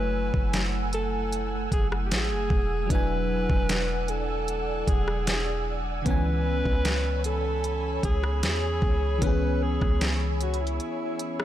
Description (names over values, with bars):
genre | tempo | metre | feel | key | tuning
contemporary R&B | 76 BPM | 4/4 | straight | unclear | A4 = 440 Hz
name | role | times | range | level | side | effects
mellow alto saxophone | melody | 0.0-11.4 s | E4 to B4 | -31 LUFS | right 1 dB | tape echo
FM electric piano with soft pad layer | accompaniment | 0.0-11.4 s | D3 to G#5 | -32 LUFS | left 1 dB | chorus
ethereal airy pad | sustained chords | 0.0-11.4 s | A3 to E6 | -34 LUFS | equal | ensemble chorus, built-in reverb
warm 808-style bass | bass | 0.0-10.8 s | E1 to E2 | -28 LUFS | equal | none
smooth R&B drum kit | drums | 0.3-11.4 s | hi-hat, kick drum, rim click, snare drum | -27 LUFS | equal | none
room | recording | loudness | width
digital ambience | none | -24 LUFS | side -12 dB against mid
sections
0.0-11.4 A section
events
break 10.8-11.4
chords
0.0 F#m9; 2.9 E9; 6.1 C#m7